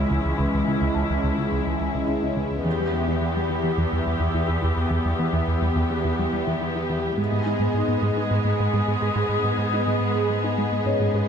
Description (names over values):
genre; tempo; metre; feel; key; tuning
cinematic, hybrid orchestral and electronic film score; 106 BPM; 4/4; straight; unclear; A4 = 440 Hz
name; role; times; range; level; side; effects
rich symphonic viola section; accompaniment; 0.0-11.3 s; G#3 to G#4; -28 LUFS; right 1 dB; none
phased analog pad; sustained chords; 0.0-11.3 s; E3 to E5; -26 LUFS; left 2 dB; phaser, chorus
soft round pluck; arpeggios; 0.0-11.2 s; C#3 to G#4; -32 LUFS; left 2 dB; chorus, ping-pong delay
smooth synth bass; riff; 0.0-11.2 s; C#2 to G#3; -26 LUFS; right 1 dB; none
rich symphonic cello section; bass; 0.0-11.3 s; C#2 to G#2; -28 LUFS; equal; none
felt-muted upright piano; texture; 0.0-11.3 s; B3 to E6; -35 LUFS; left 4 dB; ping-pong delay
room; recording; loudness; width
moderate scoring stage reverb, RT60 1.6 s; close, detailed microphones; -21 LUFS; side -7 dB against mid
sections
0.0-11.3 A section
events
build-up 0.0-11.3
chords
0.0 C#m; 2.7 Em; 7.2 G#m